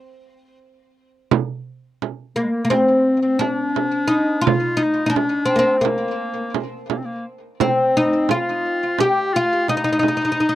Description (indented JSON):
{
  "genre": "Turkish makam ensemble",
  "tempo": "172 BPM (eighths)",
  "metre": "9/8",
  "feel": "straight",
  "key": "C makam ussak",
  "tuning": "A4 = 439 Hz",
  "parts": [
    { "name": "oud", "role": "melody", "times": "0.0-10.5 s", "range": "Bb3 to G4", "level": "-18 LUFS", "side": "left 1 dB", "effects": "tape echo" },
    { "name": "frame drum", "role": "percussion", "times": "1.3-10.2 s", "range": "none", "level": "-22 LUFS", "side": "right 9 dB", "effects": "none" },
    { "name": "bright clarinet", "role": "second line", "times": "2.4-10.6 s", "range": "Ab3 to G4", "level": "-23 LUFS", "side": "left 1 dB", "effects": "none" }
  ],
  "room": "light reverb",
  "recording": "dry, close 1970s-style studio recording",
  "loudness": "-17 LUFS",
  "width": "side -13 dB against mid",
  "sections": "0.0-1.3 A section; 1.3-10.6 B section",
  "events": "stop 0.0-1.3",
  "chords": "none"
}